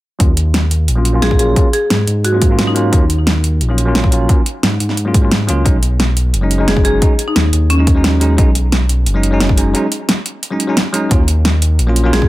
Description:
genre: liquid drum and bass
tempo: 176 BPM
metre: 4/4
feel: straight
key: Eb minor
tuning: A4 = 439 Hz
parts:
  - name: bell-like tine electric piano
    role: accompaniment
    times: 0.2-12.3 s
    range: Gb3 to F4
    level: -19 LUFS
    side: equal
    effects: fast stereo tremolo, low-pass filter, dub echo
  - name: smooth synth bass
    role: bass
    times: 0.2-12.3 s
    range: F#1 to Ab2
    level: -14 LUFS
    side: equal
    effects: none
  - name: electronic kick drum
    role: drums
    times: 0.2-12.3 s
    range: none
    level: -13 LUFS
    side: equal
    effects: overdrive
  - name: pop drum kit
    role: drums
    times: 0.2-12.2 s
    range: hi-hat, snare drum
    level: -17 LUFS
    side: equal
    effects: overdrive
  - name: marimba with medium mallets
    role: melody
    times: 1.2-3.2, 6.7-8.2, 12.1-12.3 s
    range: Db4 to Ab4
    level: -19 LUFS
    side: equal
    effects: digital delay
room: light reverb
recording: none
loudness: -11 LUFS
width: side -17 dB against mid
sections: 0.2-12.3 A section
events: filter sweep on tine electric piano 0.2-12.3; break 9.7-11.1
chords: 0.2 Ebm7; 5.7 B6; 11.1 Ebm7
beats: | 0.20 0.54 0.88 1.22 | 1.56 1.91 2.25 2.59 | 2.93 3.27 3.61 3.95 | 4.29 4.63 4.97 5.32 | 5.66 6.00 6.34 6.68 | 7.02 7.36 7.70 8.04 | 8.38 8.72 9.06 9.41 | 9.75 10.09 10.43 10.77 | 11.11 11.45 11.79 12.13

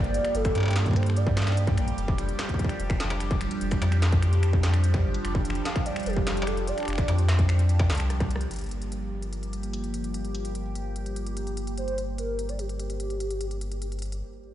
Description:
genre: IDM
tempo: 147 BPM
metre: 4/4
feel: straight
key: G minor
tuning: A4 = 441 Hz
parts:
  - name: warbly nostalgic lead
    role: melody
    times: 0.0-1.8, 5.7-7.1, 11.8-14.5 s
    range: G4 to F5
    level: -33 LUFS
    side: equal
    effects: analog chorus, digital delay
  - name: phased analog pad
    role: sustained chords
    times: 0.0-14.2 s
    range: F3 to G4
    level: -33 LUFS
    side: right 1 dB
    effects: phaser, chorus
  - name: warm sub bass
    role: bass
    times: 0.0-14.2 s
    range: F1 to G2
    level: -26 LUFS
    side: equal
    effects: tube saturation
  - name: industrial drum kit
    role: drums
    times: 0.0-14.2 s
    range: cabasa, finger snaps, hi-hat, rim click, snare drum, struck metal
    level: -35 LUFS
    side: left 1 dB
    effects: small room reverb, ping-pong delay
  - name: electronic kick drum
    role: drums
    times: 0.5-8.3 s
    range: none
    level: -27 LUFS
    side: equal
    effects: distortion, small room reverb
room: digital ambience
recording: played on a big sound system in a bare room, large studio reverb, nothing above 10.8 kHz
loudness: -24 LUFS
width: side -12 dB against mid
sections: 0.0-8.5 A section; 8.5-14.5 B section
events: drum fill 8.1-8.5; band accent 8.4; filter sweep on analog synth pad 8.5-14.5; break 14.2-14.5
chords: 0.0 Gm9; 2.0 Fsus2; 8.5 Gm7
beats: | 0.35 0.76 1.17 1.57 | 1.98 2.39 2.80 3.21 | 3.61 4.02 4.43 4.84 | 5.25 5.65 6.06 6.47 | 6.88 7.29 7.70 8.10 | 8.51 8.92 9.33 9.74 | 10.14 10.55 10.96 11.37 | 11.78 12.19 12.59 13.00 | 13.41 13.82 14.23

